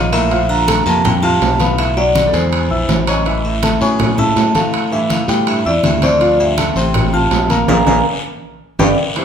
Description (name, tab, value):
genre	Afro-Cuban jazz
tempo	163 BPM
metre	4/4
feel	straight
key	A minor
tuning	A4 = 443 Hz
part	vibraphone with medium hard mallets	melody	0.0-9.2 s	C4 to Bb5	-18 LUFS	equal	none
part	bright baritone saxophone	second line	0.0-8.9 s	C#2 to D3	-23 LUFS	left 1 dB	none
part	warm concert grand piano	accompaniment	0.0-9.2 s	E3 to F6	-19 LUFS	left 2 dB	none
part	modern bright fingered electric bass	bass	0.0-8.9 s	G1 to A2	-19 LUFS	equal	none
part	guiro	percussion	0.1-9.2 s	none	-28 LUFS	left 3 dB	none
part	timbales	percussion	0.1-9.2 s	none	-22 LUFS	right 5 dB	none
part	congas	percussion	0.3-9.2 s	none	-21 LUFS	left 1 dB	none
room	moderate large studio reverb, RT60 1.2 s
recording	band playing live in one room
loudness	-12 LUFS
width	side -8 dB against mid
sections	0.0-9.2 A section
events	band accent 7.7-9.2; drum fill 8.1-9.2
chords	0.0 Bbmaj7(no3); 1.8 Bm; 2.5 Eaug; 3.3 Aadd9; 4.7 A5; 6.2 Dm11; 7.7 Bb7; 8.4 G